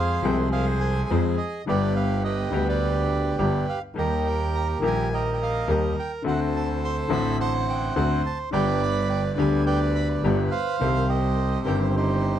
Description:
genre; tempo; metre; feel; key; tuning
tango; 105 BPM; 4/4; rubato; unclear; A4 = 440 Hz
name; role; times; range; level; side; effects
bandoneon; melody; 0.0-12.4 s; Eb4 to C6; -27 LUFS; right 5 dB; none
clear upright piano; accompaniment; 0.0-12.4 s; G1 to Ab4; -26 LUFS; left 4 dB; none
warm double bass; bass; 0.0-12.4 s; G1 to F2; -26 LUFS; right 1 dB; none
room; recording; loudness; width
light reverb; close, detailed microphones; -22 LUFS; side -10 dB against mid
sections
0.0-12.4 A section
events
none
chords
0.0 Fm; 1.7 G; 4.0 Eb; 6.3 D7; 8.5 G; 10.8 Cm

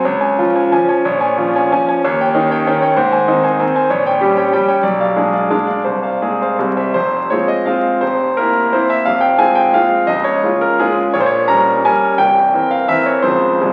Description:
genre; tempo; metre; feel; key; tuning
classical, romantic triple-time dance for piano with dotted rhythms; 148-208 BPM; 3/4; rubato; F minor; A4 = 440 Hz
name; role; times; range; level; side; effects
bright concert grand piano; solo; 0.0-13.7 s; C1 to Bb5; -15 LUFS; equal; none
room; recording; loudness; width
wet recital hall reverb, RT60 1.4 s; very old 78 rpm record, vinyl crackle; -15 LUFS; mono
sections
0.0-6.9 A section; 6.9-13.7 B section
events
none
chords
0.0 Db; 1.0 Bbm7; 2.0 Eb7; 3.0 Ab; 3.9 Gdim/Bb; 4.8 Bdim7; 5.8 Fm/C; 6.6 C; 6.9 Fm; 8.0 C7/F; 9.1 Fm; 10.1 Db; 11.1 Gdim/Bb; 12.2 C7; 13.2 Dbmaj7

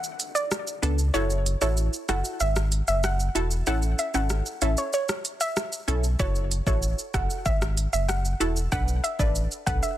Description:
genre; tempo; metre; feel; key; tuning
dancehall; 95 BPM; 4/4; straight; F# minor; A4 = 440 Hz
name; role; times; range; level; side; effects
afro-pop drum kit; drums; 0.0-10.0 s; hi-hat, kick drum, rim click, shaker; -29 LUFS; equal; soft clipping on snare
downlifter; sound effects; 0.0-1.1 s; none; -47 LUFS; left 1 dB; none
soft round pluck; melody; 0.3-9.9 s; C#5 to F#5; -29 LUFS; equal; chorus, ping-pong delay
punchy chord stab; accompaniment; 0.8-10.0 s; B3 to B4; -31 LUFS; right 1 dB; chorus, sidechain pumping
sub bass with octave; bass; 0.8-9.8 s; E1 to C#2; -25 LUFS; equal; none
room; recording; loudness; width
little or no reverb; dense, heavily limited modern master; -23 LUFS; side -13 dB against mid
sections
0.0-10.0 A section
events
break 0.0-6.2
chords
0.0 Bm7; 1.1 F#m7; 3.7 A; 6.2 F#m7; 8.7 Bm7

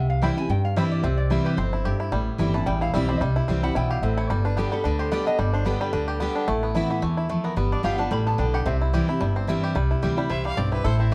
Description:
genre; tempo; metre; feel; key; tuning
bluegrass; 220 BPM; 4/4; swing 55% on 8ths; C major; A4 = 439 Hz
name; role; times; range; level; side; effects
lap resonator guitar; second line; 0.0-11.1 s; C4 to B5; -34 LUFS; equal; none
picked steel-string acoustic guitar; accompaniment; 0.0-11.1 s; E2 to G4; -27 LUFS; equal; none
upright bass; bass; 0.0-11.1 s; G1 to G2; -28 LUFS; equal; none
bluegrass banjo; arpeggios; 0.2-11.1 s; E3 to G4; -32 LUFS; equal; none
clear fiddle; melody; 10.3-11.1 s; E4 to F5; -33 LUFS; equal; none
room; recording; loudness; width
moderate small room reverb, RT60 0.5 s; dark, warm production; -24 LUFS; mono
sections
0.0-1.0 A section; 1.0-9.8 A section; 9.8-11.1 B section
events
resonator guitar played with a steel bar solo 0.0-9.8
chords
0.0 C; 2.1 Am7; 3.2 C; 4.3 G; 6.5 Amadd9; 7.6 G7; 8.7 C

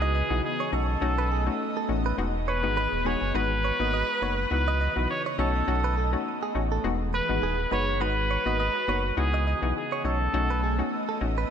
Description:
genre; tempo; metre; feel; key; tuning
afrobeats; 103 BPM; 4/4; swing 55% on 16ths; unclear; A4 = 440 Hz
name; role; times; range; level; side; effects
warm trumpet; melody; 0.0-11.2 s; G#4 to C#5; -29 LUFS; equal; ping-pong delay
hollow square pluck; accompaniment; 0.0-11.4 s; G#3 to F#4; -32 LUFS; left 7 dB; chorus
airy breathy pad; sustained chords; 0.0-11.5 s; C#3 to A#5; -34 LUFS; equal; chorus, phaser
direct-recorded clean electric guitar; riff; 0.0-11.5 s; G#4 to D#5; -34 LUFS; right 8 dB; ping-pong delay
sub bass with octave; bass; 0.0-11.5 s; D#1 to C#2; -28 LUFS; equal; none
room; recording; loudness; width
moderate lush hall reverb, RT60 3.0 s; dreamy mix soaked in reverb; -24 LUFS; side -8 dB against mid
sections
0.0-11.5 A section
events
none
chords
0.0 C#m11; 0.7 B7; 2.2 Emaj7; 3.3 G#m9; 4.5 C#m11; 5.4 B7; 6.8 Emaj7; 8.0 G#m9; 9.2 C#m11; 10.0 B7

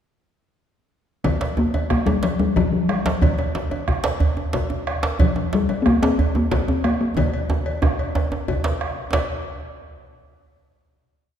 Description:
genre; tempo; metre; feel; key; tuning
west african traditional, West African drum ensemble; 122 BPM (dotted quarters); 12/8; straight; Eb major pentatonic; A4 = 440 Hz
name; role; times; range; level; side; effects
talking drum; melody; 1.2-7.8 s; Eb3 to C4; -21 LUFS; left 3 dB; none
bombo; percussion; 1.2-9.3 s; none; -27 LUFS; right 2 dB; none
cowbell; percussion; 1.2-9.3 s; none; -32 LUFS; left 3 dB; none
djembe; percussion; 1.2-9.3 s; none; -30 LUFS; left 3 dB; none
djembe; percussion; 1.2-9.3 s; none; -22 LUFS; right 2 dB; none
room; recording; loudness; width
wet scoring stage reverb, RT60 2.1 s; recorded in a church or concert hall; -19 LUFS; side -9 dB against mid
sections
1.2-9.1 A section; 9.1-11.1 final hit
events
drum fill 7.2-9.1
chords
none

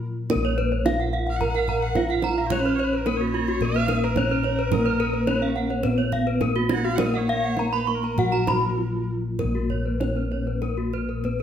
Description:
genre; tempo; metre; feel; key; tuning
Balinese gamelan; 97-109 BPM; 4/4; straight; Bb pelog; A4 = 440 Hz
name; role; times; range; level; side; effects
gamelan-type bronze metallophone; melody; 0.0-11.4 s; Bb3 to Bb4; -28 LUFS; right 2 dB; none
clear erhu; second line; 0.0-9.1 s; Gb4-25c to Gb5; -34 LUFS; right 5 dB; none
gamelan-type bronze metallophone; accompaniment; 0.0-0.3, 4.7-11.4 s; Gb3-20c to Cb4+20c; -30 LUFS; left 1 dB; none
gamelan-type bossed gongs; bass; 0.0-11.4 s; Bb1 to Bb4; -27 LUFS; left 1 dB; none
gamelan-type bronze metallophone; arpeggios; 0.3-11.4 s; Gb4-20c to Cb6+20c; -28 LUFS; left 4 dB; none
kendang; percussion; 0.3-11.4 s; none; -30 LUFS; right 5 dB; none
gamelan-type bronze metallophone; arpeggios; 0.4-11.4 s; F4-30c to Db6-30c; -30 LUFS; right 6 dB; none
room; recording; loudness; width
moderate recital hall reverb, RT60 1.2 s; none; -21 LUFS; side -9 dB against mid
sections
0.3-9.4 A section; 9.4-11.4 B section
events
break 0.0-0.3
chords
none

